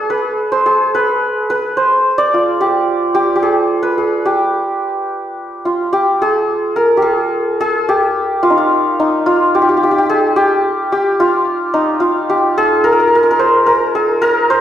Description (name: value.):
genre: persian.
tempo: 72 BPM (dotted quarters).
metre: 6/8.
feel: straight.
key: unclear.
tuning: A4 = 439 Hz.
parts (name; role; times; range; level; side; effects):
santur; solo; 0.0-14.6 s; Eb4 to D5; -12 LUFS; equal; none.
room: wet recital hall reverb, RT60 1.4 s.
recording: recorded in a church or concert hall.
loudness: -12 LUFS.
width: side -10 dB against mid.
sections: 0.0-5.9 A section; 5.9-14.6 B section.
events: none.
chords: none.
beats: 0.11 | 0.94 1.77 | 2.60 3.43 | 4.26 5.09 | 5.92 6.75 | 7.58 8.41 | 9.24 10.07 | 10.90 11.73 | 12.56 13.38 | 14.21.